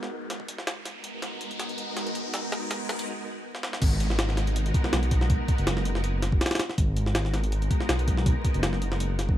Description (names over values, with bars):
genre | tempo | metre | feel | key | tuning
drum and bass, jungle | 162 BPM | 4/4 | swing 54% on 16ths | G# minor | A4 = 440 Hz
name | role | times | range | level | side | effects
soft string machine | sustained chords | 0.0-9.0 s | G#3 to A#4 | -33 LUFS | equal | ensemble chorus
jungle sampler-style drum kit | drums | 0.0-9.4 s | crash cymbal, hi-hat, kick drum, snare drum | -27 LUFS | equal | high-pass filter on snare, high-pass filter on hats, high-pass filter on kick, high-pass filter on cymbals
riser and downlifter | sound effects | 0.0-6.8 s | none | -38 LUFS | equal | none
dark detuned saw bass | bass | 3.8-9.4 s | F#1 to B1 | -26 LUFS | equal | none
room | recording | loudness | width
little or no reverb | vinyl crackle | -24 LUFS | side -12 dB against mid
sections
0.0-3.8 A section; 3.8-9.4 B section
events
build-up 0.0-3.8; riser 0.0-3.1; filter sweep on string machine 0.0-3.8; drum fill 0.9-3.1, 3.5; break 3.1-3.8; drop 3.8-9.4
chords
0.0 G#m7